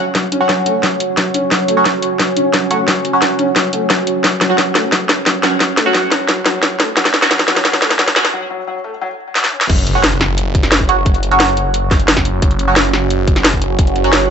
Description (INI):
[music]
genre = dark technical drum and bass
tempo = 176 BPM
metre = 4/4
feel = straight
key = unclear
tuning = A4 = 440 Hz
[part]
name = deep dark ambient pad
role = sustained chords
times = 0.0-14.3 s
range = C#4 to F#5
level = -20 LUFS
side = right 3 dB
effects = chorus, built-in reverb, sidechain pumping
[part]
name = band-passed chord stab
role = stabs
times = 0.0-14.3 s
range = F#3 to F#4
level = -18 LUFS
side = right 2 dB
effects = phaser, wide subtle chorus, ping-pong delay
[part]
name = felt-muted upright piano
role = arpeggios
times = 0.1-9.6 s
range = F#3 to C#4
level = -21 LUFS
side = left 2 dB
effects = sidechain pumping, low-pass filter, ping-pong delay
[part]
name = drum and bass drum kit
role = drums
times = 0.1-14.3 s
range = crash cymbal, hi-hat, snare drum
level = -14 LUFS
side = equal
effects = none
[part]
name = electronic kick drum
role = drums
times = 0.1-13.9 s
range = none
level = -16 LUFS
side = equal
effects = high-pass filter on kick, high-pass filter on room
[part]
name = phased detuned saw bass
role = bass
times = 9.7-14.3 s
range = F#1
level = -18 LUFS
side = equal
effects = phaser, tube saturation
[part]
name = impact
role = sound effects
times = 9.8-11.1 s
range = none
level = -26 LUFS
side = equal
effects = none
[sound]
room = moderate digital room reverb, RT60 1.2 s, digital ambience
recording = high-pass filter, nothing above 8.0 kHz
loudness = -12 LUFS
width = side -7 dB against mid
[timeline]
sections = 0.0-9.7 A section; 9.7-14.3 B section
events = build-up 0.0-9.7; drum fill 0.0-8.3, 9.4-9.7; filter sweep on felt piano 0.0-9.7; filter sweep 0.0-9.7; break 8.3-9.7; drop 9.7-14.3; impact 9.7-11.1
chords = 0.0 F#5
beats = | 0.15 0.49 0.83 1.17 | 1.51 1.85 2.19 2.54 | 2.88 3.22 3.56 3.90 | 4.24 4.58 4.92 5.26 | 5.61 5.95 6.29 6.63 | 6.97 7.31 7.65 7.99 | 8.33 8.67 9.01 9.36 | 9.70 10.04 10.38 10.72 | 11.06 11.40 11.74 12.08 | 12.42 12.76 13.11 13.45 | 13.79 14.13